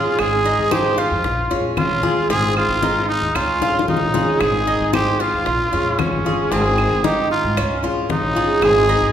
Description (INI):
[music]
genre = latin, Cuban son and guajira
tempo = 114 BPM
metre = 4/4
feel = straight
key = Ab major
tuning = A4 = 440 Hz
[part]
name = growling trumpet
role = melody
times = 0.0-9.1 s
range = Db4 to Ab4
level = -20 LUFS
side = equal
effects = none
[part]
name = nylon-string guitar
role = accompaniment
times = 0.0-9.1 s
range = Eb3 to Ab4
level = -23 LUFS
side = left 3 dB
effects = none
[part]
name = Cuban tres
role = arpeggios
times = 0.0-9.1 s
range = C4 to C5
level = -22 LUFS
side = right 4 dB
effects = none
[part]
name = upright bass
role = bass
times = 0.0-9.1 s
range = G1 to Bb2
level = -24 LUFS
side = equal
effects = none
[part]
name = bongos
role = percussion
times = 0.2-9.1 s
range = none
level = -28 LUFS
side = left 5 dB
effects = none
[part]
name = claves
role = percussion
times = 0.2-8.9 s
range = none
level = -32 LUFS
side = right 5 dB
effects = none
[part]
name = congas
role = percussion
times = 0.2-9.1 s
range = none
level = -28 LUFS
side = left 3 dB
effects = none
[sound]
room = wet recital hall reverb, RT60 1.6 s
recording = recorded in a church or concert hall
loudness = -16 LUFS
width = side -9 dB against mid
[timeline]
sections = 0.0-9.1 A section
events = drum fill 3.6-4.4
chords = 0.2 Ab; 1.2 Bbm7; 2.3 Ab; 3.4 Db; 4.4 Ab; 5.5 Bbm7; 6.5 Ab; 7.6 Db